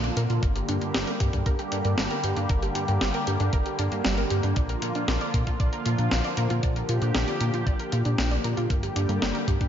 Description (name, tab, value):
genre	synthwave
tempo	116 BPM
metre	4/4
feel	straight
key	unclear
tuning	A4 = 441 Hz
part	lush unison pad	sustained chords	0.0-9.7 s	D3 to G4	-29 LUFS	left 1 dB	chorus, phaser, sidechain pumping
part	wide unison pluck	arpeggios	0.0-9.7 s	G3 to D5	-33 LUFS	right 3 dB	ping-pong delay, slapback echo
part	chorused synth bass	bass	0.0-9.7 s	G1 to Bb2	-27 LUFS	equal	sidechain pumping
part	clean 12-bit digital drum machine	drums	0.0-9.7 s	hi-hat, snare drum	-31 LUFS	left 1 dB	none
part	electronic kick drum	drums	0.4-9.7 s	none	-25 LUFS	equal	none
room	moderate lush hall reverb, RT60 2.0 s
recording	big arena sound, nothing above 7.5 kHz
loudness	-23 LUFS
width	side -9 dB against mid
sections	0.0-9.7 A section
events	none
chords	0.4 Gm; 4.6 Bb; 8.7 Gm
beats	| 0.43 0.94 1.46 1.98 | 2.50 3.01 3.53 4.05 | 4.57 5.08 5.60 6.12 | 6.63 7.15 7.67 8.19 | 8.70 9.22